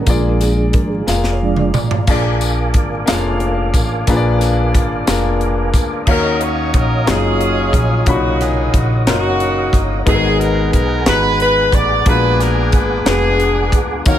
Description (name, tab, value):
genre	slow gospel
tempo	60 BPM (dotted quarters)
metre	6/8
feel	straight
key	unclear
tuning	A4 = 440 Hz
part	warm concert grand piano	accompaniment	0.0-14.2 s	Ab2 to B5	-19 LUFS	left 4 dB	none
part	mellow tonewheel organ	sustained chords	0.0-14.2 s	F3 to Eb6	-23 LUFS	right 3 dB	slow rotary speaker, chorus vibrato
part	upright bass	bass	0.0-14.2 s	F1 to Eb2	-19 LUFS	equal	none
part	crisp fusion drum kit	drums	0.1-14.2 s	crash cymbal, hi-hat, kick drum, snare drum, toms	-17 LUFS	equal	none
part	tambourine	percussion	0.1-6.0, 14.1-14.2 s	none	-29 LUFS	left 6 dB	none
part	clear horn section	melody	6.1-14.2 s	A#3 to D5	-17 LUFS	equal	tape echo
room	small room ambience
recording	none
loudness	-13 LUFS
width	side -11 dB against mid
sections	0.0-2.1 A section; 2.1-6.1 B section; 6.1-14.2 C section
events	tonewheel organ solo 0.0-2.1; drum fill 1.1-2.1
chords	0.1 Bb7; 6.1 Ebm9; 8.1 Bmaj9; 10.1 Abm9; 12.1 Bb7b9b13